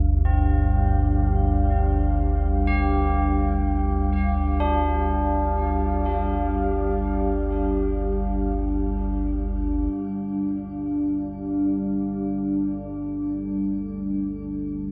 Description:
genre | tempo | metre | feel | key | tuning
dark ambient drone | free time | none | none | unclear | A4 = 440 Hz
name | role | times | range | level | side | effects
deep dark ambient pad | sustained chords | 0.0-14.9 s | G3 to G5 | -28 LUFS | equal | chorus, built-in reverb, shimmer reverb
deep rumbling drone | drone | 0.0-14.9 s | G1 to D2 | -26 LUFS | equal | built-in reverb, lush chorus
quartz singing bowl | texture | 0.0-9.9 s | none | barely audible | none | none
tubular bells | arpeggios | 0.2-14.9 s | C4 to G4 | -33 LUFS | equal | tape echo, shimmer reverb
room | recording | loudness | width
moderate plate reverb, RT60 2.5 s | echo-heavy mix, cassette tape | -24 LUFS | mono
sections
0.0-9.9 A section; 9.9-14.9 B section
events
none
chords
0.0 G5; 9.9 Gsus2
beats
free time

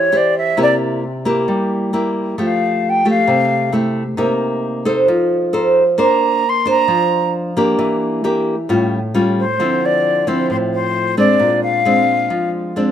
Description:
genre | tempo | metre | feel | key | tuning
bossa nova | 133 BPM | 4/4 | straight | D minor | A4 = 440 Hz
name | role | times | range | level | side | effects
silver concert flute | melody | 0.0-12.5 s | C5 to C6 | -16 LUFS | left 1 dB | none
nylon-string guitar | accompaniment | 0.0-12.9 s | A2 to C5 | -16 LUFS | equal | none
room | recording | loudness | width
light reverb | none | -14 LUFS | side -10 dB against mid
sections
0.0-9.6 A section; 9.6-12.9 B section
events
flute solo 0.0-9.6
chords
0.0 Am7 (rootless); 0.6 C7; 2.4 Fmaj9; 4.2 Cm7; 5.1 F7; 6.0 Bbadd9; 7.8 Em7b5; 8.7 A7b13; 9.6 Dm9; 11.4 Bb9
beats
0.13 | 0.58 1.03 1.48 1.93 | 2.38 2.84 3.29 3.74 | 4.19 4.64 5.09 5.54 | 5.99 6.44 6.89 7.34 | 7.79 8.24 8.70 9.15 | 9.60 10.05 10.50 10.95 | 11.40 11.86 12.31 12.76

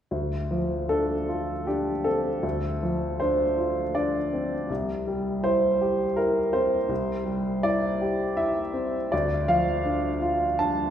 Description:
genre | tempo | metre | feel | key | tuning
neoclassical minimalist piano | 81 BPM | 3/4 | rubato | D minor | A4 = 439 Hz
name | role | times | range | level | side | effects
warm upright piano | solo | 0.1-10.9 s | C2 to A5 | -23 LUFS | equal | none
room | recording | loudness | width
wet recital hall reverb, RT60 1.6 s | recorded in a church or concert hall | -23 LUFS | side -9 dB against mid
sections
0.1-10.9 A section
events
none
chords
0.1 Dm7; 4.7 C; 9.1 Dm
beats
| 0.11 0.89 1.67 | 2.43 3.19 3.95 | 4.70 5.45 6.18 | 6.90 7.65 8.38 | 9.12 9.86 10.60

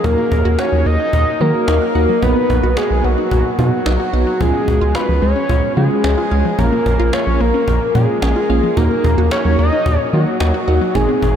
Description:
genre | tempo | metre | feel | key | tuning
synth-pop | 110 BPM | 4/4 | straight | unclear | A4 = 440 Hz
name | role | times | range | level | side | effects
fat analog lead | melody | 0.0-11.4 s | Gb4 to Eb5 | -18 LUFS | left 1 dB | analog delay
FM electric piano with tremolo | accompaniment | 0.0-11.4 s | Ab3 to Ab4 | -21 LUFS | right 2 dB | phaser
wide unison pluck | arpeggios | 0.0-11.2 s | F3 to Gb5 | -23 LUFS | left 2 dB | auto-pan, analog delay
round analog bass | bass | 0.0-11.3 s | Ab1 to Eb3 | -16 LUFS | equal | none
cajon | drums | 0.0-11.4 s | none | -25 LUFS | equal | none
room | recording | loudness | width
wet huge ambient reverb, RT60 8.6 s | dreamy mix soaked in reverb | -13 LUFS | side -8 dB against mid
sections
0.0-11.4 A section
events
none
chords
0.0 Ebm; 2.2 Cb; 4.4 Db; 6.6 Bbm; 8.8 Ebm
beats
| 0.04 0.59 1.13 1.68 | 2.22 2.77 3.31 3.86 | 4.41 4.95 5.50 6.04 | 6.59 7.13 7.68 8.22 | 8.77 9.31 9.86 10.40 | 10.95

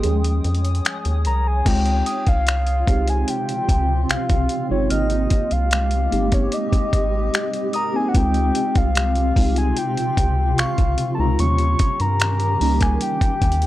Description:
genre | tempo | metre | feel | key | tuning
contemporary R&B | 74 BPM | 4/4 | straight | unclear | A4 = 440 Hz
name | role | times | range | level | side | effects
mellow FM electric piano | accompaniment | 0.0-13.7 s | F3 to Bb4 | -27 LUFS | right 1 dB | chorus, phaser
granular cloud pad | sustained chords | 0.0-13.7 s | C3 to Eb6 | -26 LUFS | equal | built-in reverb
rubbery square bass | bass | 0.0-13.7 s | G1 to G2 | -20 LUFS | equal | none
dusty soul sampler-style drum kit | drums | 0.0-13.7 s | crash cymbal, finger snaps, hi-hat, kick drum | -21 LUFS | equal | none
soft octave-layered synth lead | melody | 1.3-13.7 s | Db5 to Db6 | -24 LUFS | left 1 dB | chorus
glassy synth bell | texture | 2.1-11.7 s | Db6 to F6 | -34 LUFS | right 1 dB | chorus, tape echo
room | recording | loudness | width
digital ambience | dry, gritty hardware recording | -17 LUFS | side -15 dB against mid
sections
0.0-1.7 A section; 1.7-13.7 B section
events
break 0.0-1.7; FM electric piano solo 0.0-1.7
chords
0.0 Eb7sus4; 1.7 Dbmaj7; 4.9 Abmaj7; 8.1 Dbmaj7; 11.4 Eb7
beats
0.04 0.85 | 1.66 2.47 3.28 4.09 | 4.90 5.71 6.53 7.34 | 8.15 8.96 9.77 10.58 | 11.39 12.20 13.01

